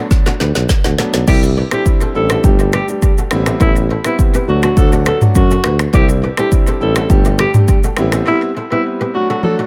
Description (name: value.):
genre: afrobeats.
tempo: 103 BPM.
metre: 4/4.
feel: straight.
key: unclear.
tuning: A4 = 440 Hz.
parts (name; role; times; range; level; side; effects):
clear concert grand piano; accompaniment; 0.0-9.7 s; F#3 to G4; -22 LUFS; equal; tape echo.
kora; riff; 0.0-9.7 s; D4 to D5; -27 LUFS; equal; tape echo.
afro-pop drum kit; drums; 0.1-9.6 s; crash cymbal, finger snaps, kick drum, rim click, shaker, snare drum, toms; -16 LUFS; equal; tape echo.
warm tuba; bass; 0.4-8.2 s; G1 to F#2; -18 LUFS; equal; none.
growling alto saxophone; melody; 1.3-9.6 s; E4 to A4; -22 LUFS; equal; tape echo.
room: small room ambience.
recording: echo-heavy mix.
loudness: -14 LUFS.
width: mono.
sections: 0.0-1.3 A section; 1.3-9.7 B section.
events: drum fill 0.1-1.3, 9.4; break 8.3-9.7.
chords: 0.0 Bm7; 1.3 Cadd9; 2.4 Gsus2; 3.3 Am7; 4.5 D; 5.9 Cadd9; 7.1 Gsus2; 8.0 Am7; 9.1 D.